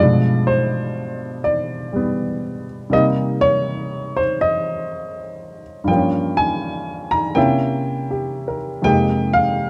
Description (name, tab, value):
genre	solo jazz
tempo	81 BPM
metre	4/4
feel	swing 67% on 8ths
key	unclear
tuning	A4 = 445 Hz
part	warm baby grand piano	solo	0.0-9.7 s	F2 to Bb5	-20 LUFS	equal	none
room	light reverb, small room ambience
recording	dry, close 1970s-style studio recording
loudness	-20 LUFS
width	mono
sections	0.0-9.7 A section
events	none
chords	0.0 G7b9; 2.9 Cm7; 5.9 Gm7b5; 7.4 C7b9; 8.8 Fm11